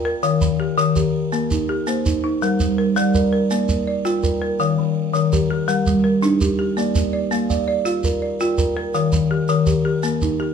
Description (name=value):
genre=southern african traditional, mbira-style interlocking cycle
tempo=110 BPM (dotted quarters)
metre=12/8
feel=straight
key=unclear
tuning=A4 = 441 Hz
part: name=buzzing kalimba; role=arpeggios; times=0.0-10.5 s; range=Eb3 to G5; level=-22 LUFS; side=right 4 dB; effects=none
part: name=folk marimba with medium hard mallets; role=arpeggios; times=0.0-10.5 s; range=Eb3 to D5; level=-20 LUFS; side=left 4 dB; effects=none
part: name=shekere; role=percussion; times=0.2-10.4 s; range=none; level=-24 LUFS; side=right 2 dB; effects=none
room=wet large studio reverb, RT60 0.9 s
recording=band playing live in one room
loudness=-17 LUFS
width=side -7 dB against mid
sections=0.0-10.5 A section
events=none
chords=0.2 Eb; 2.4 Gm; 3.5 Bb; 4.6 Eb; 5.7 Gm; 6.8 Bb; 8.9 Eb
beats=| 0.23 0.78 1.32 1.87 | 2.41 2.96 3.50 4.05 | 4.59 5.14 5.68 6.23 | 6.77 7.32 7.86 8.40 | 8.95 9.49 10.04